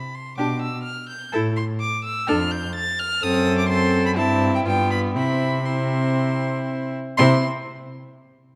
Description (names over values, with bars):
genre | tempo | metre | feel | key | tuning
quick classical-period movement for string quartet | 117-128 BPM | 4/4 | straight | C major | A4 = 441 Hz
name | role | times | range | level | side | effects
rich violin | melody | 0.0-7.5 s | G5 to A6 | -28 LUFS | equal | none
rich violin | second line | 0.4-7.5 s | E4 to A4 | -29 LUFS | equal | none
warm viola | accompaniment | 0.4-7.5 s | B3 to E4 | -27 LUFS | equal | none
rich cello | bass | 0.4-7.5 s | F2 to C3 | -27 LUFS | equal | none
room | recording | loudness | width
moderate concert hall reverb, RT60 1.8 s | none | -22 LUFS | mono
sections
0.0-7.2 A section; 7.2-8.6 B section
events
none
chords
0.4 G/B; 1.3 A5; 2.3 Dm/F; 3.2 F#dim; 4.2 C/G; 4.7 G7; 5.2 C; 7.2 N.C.